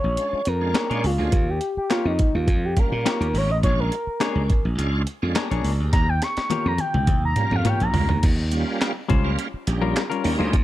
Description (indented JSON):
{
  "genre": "funk",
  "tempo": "104 BPM",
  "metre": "4/4",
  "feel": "straight",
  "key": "unclear",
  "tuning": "A4 = 441 Hz",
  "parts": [
    { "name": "expressive synth lead", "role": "melody", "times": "0.0-8.2 s", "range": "Eb4 to Db6", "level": "-25 LUFS", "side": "equal", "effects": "chorus" },
    { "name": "slap bass", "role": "bass", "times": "0.0-10.6 s", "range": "Ab1 to Bb2", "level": "-23 LUFS", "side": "equal", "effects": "none" },
    { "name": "bright tonewheel organ", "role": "stabs", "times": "0.2-10.6 s", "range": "G3 to D5", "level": "-30 LUFS", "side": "right 3 dB", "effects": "chorus vibrato, slow rotary speaker" },
    { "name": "breakbeat sampler-style drum kit", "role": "drums", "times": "0.2-10.6 s", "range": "crash cymbal, handclaps, hi-hat, kick drum, snare drum, toms", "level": "-23 LUFS", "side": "equal", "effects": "none" },
    { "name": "semi-hollow electric guitar", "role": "accompaniment", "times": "0.7-10.6 s", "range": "G3 to C#5", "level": "-28 LUFS", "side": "left 7 dB", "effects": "spring reverb" }
  ],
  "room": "little or no reverb",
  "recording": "dark, warm production",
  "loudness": "-20 LUFS",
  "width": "side -14 dB against mid",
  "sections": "0.0-8.2 A section; 8.2-10.6 B section",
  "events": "analog synth lead solo 0.0-8.2; drum fill 5.9-8.2",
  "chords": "0.0 Bb7#9; 1.3 Eb9; 3.6 Bb7#9; 5.9 Eb9"
}